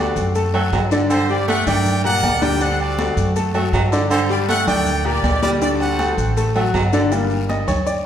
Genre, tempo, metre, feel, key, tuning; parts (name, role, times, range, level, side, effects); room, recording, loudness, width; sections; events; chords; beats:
latin, salsa; 160 BPM; 4/4; straight; G harmonic minor; A4 = 440 Hz
brilliant trumpet section; melody; 0.0-6.5 s; F#4 to G5; -22 LUFS; equal
clear baritone saxophone; second line; 0.0-7.0 s; D3 to A3; -23 LUFS; right 3 dB
bright grand piano; accompaniment; 0.0-8.0 s; Bb2 to D6; -21 LUFS; left 3 dB
upright bass; bass; 0.0-8.1 s; G1 to G2; -22 LUFS; equal
congas; percussion; 0.2-8.1 s; -29 LUFS; left 1 dB
guiro; percussion; 0.2-8.1 s; -38 LUFS; left 6 dB
maracas; percussion; 0.2-8.1 s; -38 LUFS; left 6 dB
agogo bells and timbales; percussion; 0.4-7.9 s; -27 LUFS; right 3 dB
wet recital hall reverb, RT60 1.3 s; recorded in a church or concert hall; -16 LUFS; side -9 dB against mid
0.0-7.1 A section
0.0 D7; 1.1 Gm; 2.6 D7; 4.1 Gm; 5.6 D7; 7.1 Gm
0.35 0.73 | 1.11 1.48 1.86 2.23 | 2.61 2.98 3.36 3.74 | 4.11 4.49 4.86 5.24 | 5.61 5.99 6.37 6.74 | 7.12 7.49 7.87